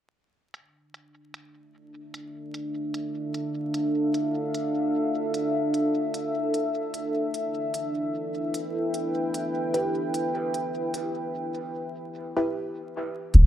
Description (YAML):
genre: ambient dub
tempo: 75 BPM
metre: 4/4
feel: swing 56% on 16ths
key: D dorian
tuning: A4 = 443 Hz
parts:
  - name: deep dark ambient pad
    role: sustained chords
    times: 2.2-13.5 s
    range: D4 to G5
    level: -27 LUFS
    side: equal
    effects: chorus, built-in reverb
  - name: electronic hi-hat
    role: drums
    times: 0.5-13.5 s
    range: none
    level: -41 LUFS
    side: right 1 dB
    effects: low-pass filter on hats, low-pass filter on room, dub echo
  - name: filtered dub chord stab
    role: stabs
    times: 9.7-13.3 s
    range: E4 to B4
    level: -30 LUFS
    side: right 1 dB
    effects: phaser, lush chorus, dub echo
  - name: soft dub sub bass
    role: bass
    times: 13.3-13.5 s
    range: D1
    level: -12 LUFS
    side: equal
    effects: none
  - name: electronic kick drum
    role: drums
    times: 13.3-13.5 s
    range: none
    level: -20 LUFS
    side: equal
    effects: none
room: light reverb, digital ambience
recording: dark, warm production, vinyl crackle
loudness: -26 LUFS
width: side -12 dB against mid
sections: 0.5-13.3 A section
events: break 11.7-13.3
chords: 0.5 Dm; 6.9 Em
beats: | 0.54 1.34 2.14 2.94 | 3.74 4.54 5.34 6.14 | 6.94 7.74 8.54 9.34 | 10.14 10.94 11.74 12.54 | 13.34